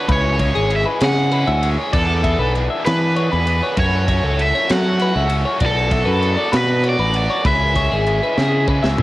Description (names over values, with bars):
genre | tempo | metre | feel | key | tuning
math rock and midwest emo | 65 BPM (dotted quarters) | 6/8 | straight | unclear | A4 = 441 Hz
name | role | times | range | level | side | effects
cranked stack guitar | melody | 0.0-8.6 s | A4 to F#5 | -21 LUFS | right 1 dB | overdrive, cassette tape
twelve-string electric guitar | arpeggios | 0.0-9.0 s | G#4 to E5 | -23 LUFS | left 4 dB | cassette tape
biting overdriven guitar | riff | 0.0-9.0 s | E3 to G#4 | -24 LUFS | right 1 dB | cassette tape
modern bright fingered electric bass | bass | 0.1-9.0 s | G#1 to F#3 | -19 LUFS | equal | none
crisp fusion drum kit | drums | 0.1-9.0 s | crash cymbal, kick drum, ride cymbal, snare drum, toms | -23 LUFS | equal | none
room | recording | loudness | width
little or no reverb | home recording on cassette | -15 LUFS | side -17 dB against mid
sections
0.0-9.0 A section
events
drum fill 8.4-9.0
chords
0.1 C#m7; 1.9 E7sus4; 3.8 F#m7; 5.6 Bm7; 7.5 C#m7